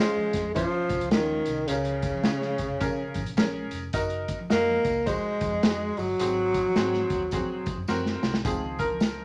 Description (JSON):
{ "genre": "uptempo 1960s-style soul", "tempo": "106 BPM", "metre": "4/4", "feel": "swing 61% on 8ths", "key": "Db major", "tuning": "A4 = 440 Hz", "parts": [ { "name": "breathy tenor saxophone", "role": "melody", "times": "0.0-7.9 s", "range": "Db3 to Bb3", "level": "-28 LUFS", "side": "equal", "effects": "none" }, { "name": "bright upright piano", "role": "accompaniment", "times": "0.0-9.2 s", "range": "Ab2 to Db5", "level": "-34 LUFS", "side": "equal", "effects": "none" }, { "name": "vintage drum kit", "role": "drums", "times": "0.0-9.2 s", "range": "hi-hat, kick drum, snare drum", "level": "-31 LUFS", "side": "equal", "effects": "none" }, { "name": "tambourine", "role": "percussion", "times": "0.0-9.2 s", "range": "none", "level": "-51 LUFS", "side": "equal", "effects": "none" }, { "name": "vintage muted fingered electric bass", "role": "bass", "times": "0.2-9.2 s", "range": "F1 to Db3", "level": "-39 LUFS", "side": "equal", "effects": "none" }, { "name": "congas", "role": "percussion", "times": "0.2-9.2 s", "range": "none", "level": "-44 LUFS", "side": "equal", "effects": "none" } ], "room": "light reverb", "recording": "none", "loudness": "-27 LUFS", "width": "mono", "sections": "0.0-8.5 A section", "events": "drum fill 7.9-8.5", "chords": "0.0 Dbmaj7; 1.7 Bbm7; 3.9 Gb6; 6.2 Ab7; 8.5 Dbmaj7", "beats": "0.56 1.12 | 1.68 2.25 2.81 3.38 | 3.94 4.50 5.07 5.63 | 6.20 6.76 7.32 7.89 | 8.45 9.02" }